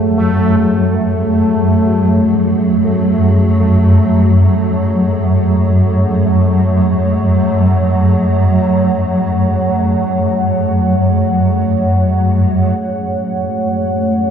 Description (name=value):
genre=dark ambient drone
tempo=free time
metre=none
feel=none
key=unclear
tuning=A4 = 441 Hz
part: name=deep dark ambient pad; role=sustained chords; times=0.0-14.3 s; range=A3 to F#5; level=-17 LUFS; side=equal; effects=chorus, built-in reverb
part: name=swarming drone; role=drone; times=0.0-14.3 s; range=F#2 to F#3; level=-12 LUFS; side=equal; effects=built-in reverb, wide subtle chorus
part: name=bubbling stepped-filter texture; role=texture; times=0.0-12.8 s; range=A3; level=-22 LUFS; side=equal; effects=chorus, built-in reverb
room=wet plate reverb, RT60 3.5 s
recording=dreamy mix soaked in reverb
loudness=-11 LUFS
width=side -8 dB against mid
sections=0.0-12.8 A section; 12.8-14.3 B section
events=fade-out on ambient pad 0.0-12.8; fade-out on synth texture 0.0-12.8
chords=0.0 F#madd9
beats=free time